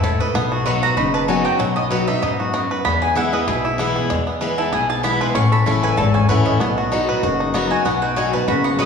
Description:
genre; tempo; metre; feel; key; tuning
bluegrass; 192 BPM; 4/4; swing 54% on 8ths; B mixolydian; A4 = 438 Hz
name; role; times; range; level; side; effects
picked steel-string acoustic guitar; accompaniment; 0.0-8.9 s; E2 to F#4; -21 LUFS; left 3 dB; none
bluegrass banjo; arpeggios; 0.0-8.9 s; F#3 to B4; -22 LUFS; right 1 dB; none
mandolin; stabs; 0.0-8.9 s; C#5 to D#6; -23 LUFS; right 2 dB; none
upright bass; bass; 0.0-8.9 s; E1 to F#2; -23 LUFS; left 2 dB; none
room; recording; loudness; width
wet recital hall reverb, RT60 1.7 s; recorded in a church or concert hall; -16 LUFS; side -6 dB against mid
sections
0.0-1.6 A section; 1.6-8.9 A section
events
mandolin solo 0.0-8.9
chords
0.3 B; 2.9 E; 5.4 A; 6.6 B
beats
0.04 | 0.35 0.66 0.97 1.29 | 1.60 1.91 2.22 2.54 | 2.85 3.16 3.48 3.79 | 4.10 4.42 4.73 5.04 | 5.35 5.67 5.98 6.29 | 6.61 6.92 7.23 7.54 | 7.86 8.17 8.48 8.79

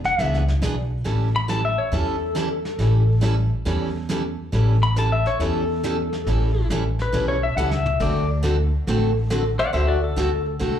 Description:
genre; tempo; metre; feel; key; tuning
country, western swing; 138 BPM; 4/4; swing 66% on 8ths; A mixolydian; A4 = 440 Hz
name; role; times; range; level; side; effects
vintage brush drum kit; drums; 0.0-10.8 s; brushed snare drum, crash cymbal, hi-hat, kick drum, snare drum, toms; -34 LUFS; equal; slapback echo
picked steel-string acoustic guitar; accompaniment; 0.2-10.8 s; D3 to A4; -26 LUFS; right 2 dB; plate reverb, slapback echo
upright bass; bass; 0.2-10.8 s; A1 to E2; -22 LUFS; equal; none
pedal steel guitar; second line; 1.4-10.5 s; F#4 to B5; -24 LUFS; left 4 dB; plate reverb, slapback echo
room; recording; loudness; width
moderate club ambience, RT60 0.5 s; live gig heard through the venue's PA, club reverb; -19 LUFS; side -10 dB against mid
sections
0.0-1.1 A section; 1.1-10.8 A section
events
pedal steel guitar solo 1.1-10.8; drum fill 7.6-8.0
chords
0.0 E7; 1.1 A7; 8.0 D7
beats
0.19 0.62 | 1.06 1.49 1.93 2.36 | 2.79 3.23 3.66 4.10 | 4.53 4.96 5.40 5.83 | 6.27 6.70 7.13 7.57 | 8.00 8.44 8.87 9.30 | 9.74 10.17 10.61

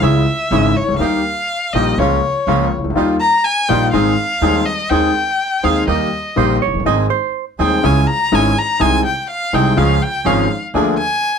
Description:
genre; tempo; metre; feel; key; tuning
tango; 123 BPM; 4/4; rubato; Ab major; A4 = 440 Hz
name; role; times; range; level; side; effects
warm violin; second line; 0.0-11.4 s; Db5 to Bb5; -18 LUFS; left 2 dB; none
warm grand piano; accompaniment; 0.0-10.9 s; Eb1 to Ab4; -17 LUFS; left 4 dB; none
bandoneon; stabs; 0.0-10.9 s; G3 to Ab4; -21 LUFS; right 8 dB; none
upright bass; bass; 0.0-10.9 s; F1 to Eb2; -20 LUFS; right 3 dB; none
hollow-body jazz guitar; second line; 6.4-7.4 s; C5 to Eb5; -19 LUFS; right 12 dB; none
room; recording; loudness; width
moderate club reverb, RT60 0.5 s; none; -13 LUFS; side -7 dB against mid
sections
0.0-11.4 A section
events
violin solo 0.0-11.4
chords
0.0 Dbm; 1.0 Eb; 2.0 Bbm/Db; 3.0 Ebadd9; 3.9 Ab/Eb; 5.9 Eb; 6.9 Ab; 7.8 Dbm; 8.8 Ab/C; 9.8 Db; 10.7 Bb7/D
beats
0.03 0.52 | 1.01 1.50 1.98 2.47 | 2.96 3.44 3.93 4.42 | 4.90 5.39 5.88 6.37 | 6.86 7.35 7.84 8.32 | 8.81 9.29 9.77 10.26 | 10.74 11.22

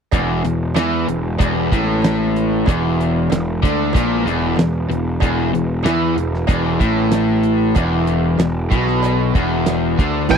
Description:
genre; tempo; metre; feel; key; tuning
classic rock; 94 BPM; 4/4; straight; E mixolydian; A4 = 441 Hz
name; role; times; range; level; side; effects
string machine, cellos; sustained chords; 0.1-10.4 s; G#3 to C#5; -30 LUFS; right 1 dB; none
biting overdriven guitar; riff; 0.1-10.4 s; E2 to E4; -20 LUFS; left 12 dB; none
overdriven semi-hollow guitar; riff; 0.1-10.4 s; E2 to A4; -22 LUFS; right 16 dB; spring reverb
fuzz picked electric bass; bass; 0.1-10.4 s; E1 to E2; -21 LUFS; equal; overdrive
damped 70s drum kit; drums; 0.1-10.4 s; hi-hat, kick drum, snare drum; -18 LUFS; right 1 dB; none
cowbell; percussion; 0.1-10.4 s; none; -29 LUFS; right 15 dB; none
octave-fuzz lead guitar; melody; 10.3-10.4 s; G#5; -16 LUFS; right 1 dB; distortion
picked steel-string acoustic guitar; accompaniment; 10.3-10.4 s; A2 to A4; -14 LUFS; right 10 dB; none
room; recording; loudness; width
little or no reverb; dry, close 1970s-style studio recording; -15 LUFS; side -7 dB against mid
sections
0.1-10.3 A section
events
none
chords
0.1 E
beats
| 0.12 0.76 1.40 2.03 | 2.67 3.31 3.94 4.58 | 5.22 5.85 6.49 7.13 | 7.76 8.40 9.03 9.67 | 10.31

